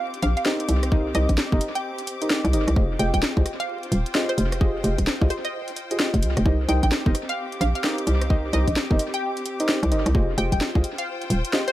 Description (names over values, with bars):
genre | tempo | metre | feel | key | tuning
UK garage, two-step garage | 130 BPM | 4/4 | swing 62% on 16ths | C minor | A4 = 440 Hz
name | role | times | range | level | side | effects
rich studio string section | texture | 0.0-11.7 s | C4 to D6 | -33 LUFS | left 1 dB | sidechain pumping
garage drum kit | drums | 0.1-11.7 s | hi-hat, rim click, snare drum | -27 LUFS | equal | overdrive, studio ambience, dub echo
hollow square pluck | melody | 0.2-11.7 s | C5 to G5 | -30 LUFS | equal | analog chorus, dub echo
hollow knocking FM bass | bass | 0.2-11.4 s | Eb1 to C2 | -22 LUFS | equal | none
deep mellow chord stab | stabs | 0.5-11.7 s | Eb4 to Eb5 | -28 LUFS | equal | chorus, cassette tape, tape echo
electronic kick drum | drums | 0.9-10.8 s | none | -22 LUFS | equal | overdrive, studio ambience
room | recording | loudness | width
light reverb, digital ambience | echo-heavy mix, vinyl crackle | -20 LUFS | side -14 dB against mid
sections
0.0-11.7 A section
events
none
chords
0.0 Cm7; 2.8 Fm9; 6.5 Cm7; 10.1 Fm9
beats
0.46 | 0.92 1.38 1.84 2.30 | 2.76 3.23 3.69 4.15 | 4.61 5.07 5.53 5.99 | 6.46 6.92 7.38 7.84 | 8.30 8.76 9.22 9.69 | 10.15 10.61 11.07 11.53